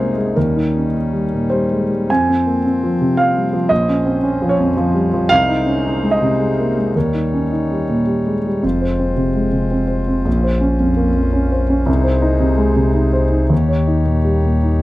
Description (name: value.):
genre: neoclassical piano and strings.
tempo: 99-114 BPM.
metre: 3/4.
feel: rubato.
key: Ab major.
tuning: A4 = 441 Hz.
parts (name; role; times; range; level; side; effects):
warm concert grand piano; accompaniment; 0.0-14.8 s; Bb1 to Ab5; -15 LUFS; equal; none.
pedal harmonium; sustained chords; 0.0-14.8 s; F3 to Db5; -25 LUFS; left 2 dB; none.
warm sub bass; bass; 8.6-14.8 s; F1 to Eb2; -18 LUFS; equal; none.
room: little or no reverb.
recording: dry, close 1970s-style studio recording.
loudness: -14 LUFS.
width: side -17 dB against mid.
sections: 0.0-8.6 A section; 8.6-14.8 B section.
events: none.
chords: 0.4 Eb7; 2.1 Fm; 3.7 Bbmadd9; 5.3 Ab/C; 6.9 Eb7; 8.6 Fm; 10.3 Bbmadd9; 11.9 Ab/C; 13.5 Eb7.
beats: | 0.36 0.93 1.50 | 2.09 2.64 3.18 | 3.70 4.23 4.77 | 5.30 5.84 6.39 | 6.95 7.51 8.07 | 8.64 9.18 9.72 | 10.27 10.81 11.35 | 11.88 12.41 12.95 | 13.51 14.08 14.64.